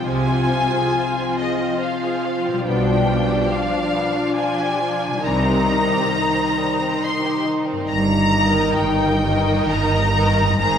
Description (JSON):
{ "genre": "classical, slow romantic movement for symphony orchestra", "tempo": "68 BPM", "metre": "3/4", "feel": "uneven beats, rubato", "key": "C minor", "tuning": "A4 = 440 Hz", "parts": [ { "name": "warm symphonic violin section", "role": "melody", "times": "0.0-10.8 s", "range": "Eb5 to C6", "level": "-22 LUFS", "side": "left 2 dB", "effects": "none" }, { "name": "warm symphonic violin section", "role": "second line", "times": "0.0-10.8 s", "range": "G3 to Eb5", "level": "-27 LUFS", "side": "left 2 dB", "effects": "none" }, { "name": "rich symphonic viola section", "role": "accompaniment", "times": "0.0-10.8 s", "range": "Eb3 to F4", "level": "-24 LUFS", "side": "right 2 dB", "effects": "none" }, { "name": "dark French horn section", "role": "sustained chords", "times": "0.0-10.8 s", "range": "Eb3 to Eb4", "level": "-26 LUFS", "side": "left 3 dB", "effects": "none" }, { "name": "concert harp", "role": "arpeggios", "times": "0.0-10.8 s", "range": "G2 to Eb5", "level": "-27 LUFS", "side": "left 7 dB", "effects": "none" }, { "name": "rich symphonic double bass section", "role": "bass", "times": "0.0-10.8 s", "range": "G1 to C2", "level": "-25 LUFS", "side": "right 3 dB", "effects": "none" }, { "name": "warm studio cello section", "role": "bass", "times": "0.0-10.8 s", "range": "G2 to C3", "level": "-24 LUFS", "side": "right 2 dB", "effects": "none" } ], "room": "wet concert hall reverb, RT60 1.9 s", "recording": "none", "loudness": "-17 LUFS", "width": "side -8 dB against mid", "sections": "0.0-10.8 A section", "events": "none", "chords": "0.0 Fm/C; 2.7 G7/B; 5.2 Cm; 7.9 Eb/G", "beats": "| 0.04 0.94 1.81 | 2.66 3.52 4.38 | 5.25 6.14 7.03 | 7.90 8.78 9.69 | 10.59" }